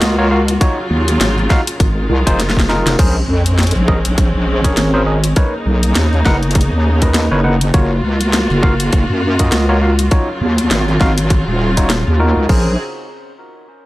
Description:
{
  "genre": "glitch hop",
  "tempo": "101 BPM",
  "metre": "4/4",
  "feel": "swing 58% on 16ths",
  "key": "Bb minor",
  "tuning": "A4 = 441 Hz",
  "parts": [
    { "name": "clear symphonic string section", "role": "sustained chords", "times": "0.0-12.8 s", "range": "Db3 to Ab4", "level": "-21 LUFS", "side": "equal", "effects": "sidechain pumping" },
    { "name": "overdriven tine electric piano", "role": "stabs", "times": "0.0-12.7 s", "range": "Db4 to F#5", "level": "-20 LUFS", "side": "equal", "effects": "sidechain pumping, low-pass filter, tape echo" },
    { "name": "wobble bass", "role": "bass", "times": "0.0-12.8 s", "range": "Eb1 to Gb2", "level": "-14 LUFS", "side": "equal", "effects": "chorus, tube saturation" },
    { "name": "drum and bass drum kit", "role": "drums", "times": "0.0-12.6 s", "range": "crash cymbal, hi-hat, snare drum", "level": "-19 LUFS", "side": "left 1 dB", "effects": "overdrive, studio reverb" },
    { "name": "electronic kick drum", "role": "drums", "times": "0.6-12.6 s", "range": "none", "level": "-14 LUFS", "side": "equal", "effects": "overdrive, studio reverb" },
    { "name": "vowel-sweep wobble bass", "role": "bass", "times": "0.9-2.8 s", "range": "F1 to Eb2", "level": "-17 LUFS", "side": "equal", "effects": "chorus" },
    { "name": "sub drop", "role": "sound effects", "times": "3.0-5.4 s", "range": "none", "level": "-24 LUFS", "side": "equal", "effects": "none" }
  ],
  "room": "little or no reverb",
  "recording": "dry, gritty hardware recording, transformer saturation",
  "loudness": "-12 LUFS",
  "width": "side -18 dB against mid",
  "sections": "0.0-3.0 A section; 3.0-12.5 B section; 12.5-13.9 C section",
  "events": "drop 0.0-3.0; drum fill 2.7; impact 3.0-5.4",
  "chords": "0.0 Gbmaj7; 0.6 Ebm9; 1.8 Fm7; 3.0 Bbm9; 5.4 Bmaj9; 7.7 Gbmaj7; 10.1 Ebm9; 12.5 Bbm9"
}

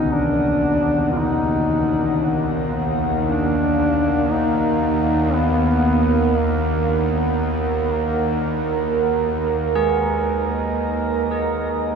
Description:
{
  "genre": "dark ambient drone",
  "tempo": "free time",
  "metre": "none",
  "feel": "none",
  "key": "Eb harmonic minor",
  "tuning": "A4 = 440 Hz",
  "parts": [
    { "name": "dark duduk", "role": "melody", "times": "0.0-7.1 s", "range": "Bb3 to F4", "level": "-22 LUFS", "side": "left 2 dB", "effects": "shimmer reverb, dub echo" },
    { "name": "deep dark ambient pad", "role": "sustained chords", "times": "0.0-12.0 s", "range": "Gb4 to Gb5", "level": "-23 LUFS", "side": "right 3 dB", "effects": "chorus, built-in reverb, shimmer reverb" },
    { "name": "bowed-like drone", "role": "drone", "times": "0.0-12.0 s", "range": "Eb2", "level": "-22 LUFS", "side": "right 1 dB", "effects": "built-in reverb" },
    { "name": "quartz singing bowl", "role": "texture", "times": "0.0-12.0 s", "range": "Bb4", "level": "-45 LUFS", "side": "right 3 dB", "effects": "none" },
    { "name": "carillon bells", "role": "arpeggios", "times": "9.8-12.0 s", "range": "Ab4", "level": "-28 LUFS", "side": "left 1 dB", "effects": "shimmer reverb, dub echo" }
  ],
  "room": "wet spring reverb, RT60 2.5 s",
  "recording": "echo-heavy mix",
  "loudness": "-17 LUFS",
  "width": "side -6 dB against mid",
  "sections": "0.0-12.0 A section",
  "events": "none",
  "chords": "0.0 Ebm"
}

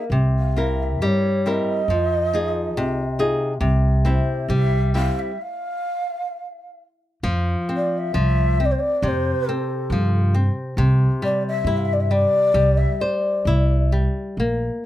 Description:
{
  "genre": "fado-style ballad",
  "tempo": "64-70 BPM",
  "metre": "2/4",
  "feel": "rubato",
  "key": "F major from 7.2 s",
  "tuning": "A4 = 440 Hz",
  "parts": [
    { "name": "breathy mellow long shakuhachi", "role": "melody", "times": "0.0-13.9 s", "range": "A4 to F5", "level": "-23 LUFS", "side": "left 1 dB", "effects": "plate reverb" },
    { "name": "flamenco guitar", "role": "accompaniment", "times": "0.0-14.9 s", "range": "C3 to C5", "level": "-24 LUFS", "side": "left 1 dB", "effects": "none" },
    { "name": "upright bass", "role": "bass", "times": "0.1-14.7 s", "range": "Bb1 to G2", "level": "-20 LUFS", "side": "equal", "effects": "none" }
  ],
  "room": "light reverb",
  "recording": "close, detailed microphones",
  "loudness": "-18 LUFS",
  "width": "side -14 dB against mid",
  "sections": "0.0-7.2 A section; 7.2-14.9 B section",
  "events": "stop 5.4-7.2",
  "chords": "0.1 C7; 1.9 Fm7; 3.6 C; 5.4 N.C.; 7.2 F; 10.8 Cadd9"
}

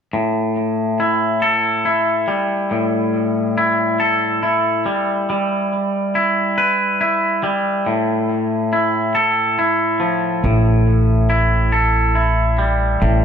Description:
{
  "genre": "rock",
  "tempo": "46 BPM (dotted quarters)",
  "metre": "6/8",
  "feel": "straight",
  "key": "unclear",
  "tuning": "A4 = 444 Hz",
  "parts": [
    { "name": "twangy electric guitar", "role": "arpeggios", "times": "0.1-13.2 s", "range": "A2 to B4", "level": "-16 LUFS", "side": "equal", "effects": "digital delay" },
    { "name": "upright bass", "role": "bass", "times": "10.4-13.2 s", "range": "A1", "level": "-16 LUFS", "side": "equal", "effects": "none" }
  ],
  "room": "moderate large studio reverb, RT60 1.4 s, studio reverb",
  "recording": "none",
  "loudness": "-15 LUFS",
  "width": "side -7 dB against mid",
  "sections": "0.1-13.2 A section",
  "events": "none",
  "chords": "0.1 A5; 5.3 G6; 7.9 Fmaj7/A; 10.4 A5"
}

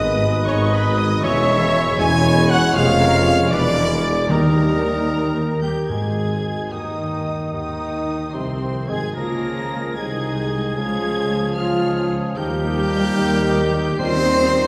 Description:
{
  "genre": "classical",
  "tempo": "71-80 BPM (dotted quarters)",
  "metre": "6/8",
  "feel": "straight",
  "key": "Ab major",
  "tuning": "A4 = 440 Hz",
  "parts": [
    { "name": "warm symphonic violin section", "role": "melody", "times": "0.0-14.7 s", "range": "Bb5 to C7", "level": "-32 LUFS", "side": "equal", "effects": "none" },
    { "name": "clear symphonic violin section", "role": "second line", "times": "0.0-14.7 s", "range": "C4 to G#5", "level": "-35 LUFS", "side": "equal", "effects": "none" },
    { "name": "dark clarinet", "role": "second line", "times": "0.0-14.7 s", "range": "C4 to C5", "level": "-30 LUFS", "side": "equal", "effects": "none" },
    { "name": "mellow hollow small flute group", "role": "second line", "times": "0.0-14.7 s", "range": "Bb4 to C6", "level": "-33 LUFS", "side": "equal", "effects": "none" },
    { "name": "warm oboe", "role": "second line", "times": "0.0-14.7 s", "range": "Ab4 to Ab5", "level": "-32 LUFS", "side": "equal", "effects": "none" },
    { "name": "mellow bassoon", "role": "accompaniment", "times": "0.0-14.7 s", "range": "C3 to G#3", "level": "-32 LUFS", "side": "equal", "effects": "none" },
    { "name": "rich symphonic viola section", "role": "accompaniment", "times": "0.0-14.7 s", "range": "F3 to E5", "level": "-31 LUFS", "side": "equal", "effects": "none" },
    { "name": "mellow French horn section", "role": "sustained chords", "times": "0.0-14.7 s", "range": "C3 to F4", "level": "-30 LUFS", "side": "equal", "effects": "none" },
    { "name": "concert harp", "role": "arpeggios", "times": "0.0-14.7 s", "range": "G2 to Eb5", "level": "-32 LUFS", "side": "equal", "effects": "none" },
    { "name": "bright trumpet", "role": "stabs", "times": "0.0-14.7 s", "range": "C4 to G#5", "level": "-28 LUFS", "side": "equal", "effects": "none" },
    { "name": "mellow tuba", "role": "bass", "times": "0.0-14.7 s", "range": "E1 to Eb2", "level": "-29 LUFS", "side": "equal", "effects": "none" },
    { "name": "warm symphonic cello section", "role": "bass", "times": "0.0-14.7 s", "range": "Eb2 to C4", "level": "-29 LUFS", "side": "equal", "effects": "none" },
    { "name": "warm symphonic double bass section", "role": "bass", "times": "0.0-14.7 s", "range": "E1 to Ab2", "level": "-29 LUFS", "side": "equal", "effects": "none" },
    { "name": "timpani", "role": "percussion", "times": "0.0-0.4, 4.3-6.7, 14.0-14.7 s", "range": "G#2 to Eb3", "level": "-28 LUFS", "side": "equal", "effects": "none" }
  ],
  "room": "wet scoring stage reverb, RT60 2.0 s",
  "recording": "heard from further back in the room",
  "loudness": "-19 LUFS",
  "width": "mono",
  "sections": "0.0-5.9 A section; 5.9-14.7 B section",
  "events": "none",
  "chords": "0.0 G#m; 1.2 C#m/E; 2.7 Db/F; 3.5 E7; 4.3 Eb; 5.9 Ab; 6.7 Eb; 7.5 Ab/Eb; 9.2 Db; 10.0 Ab/C; 10.8 Db; 12.4 Eb; 14.0 Eb13"
}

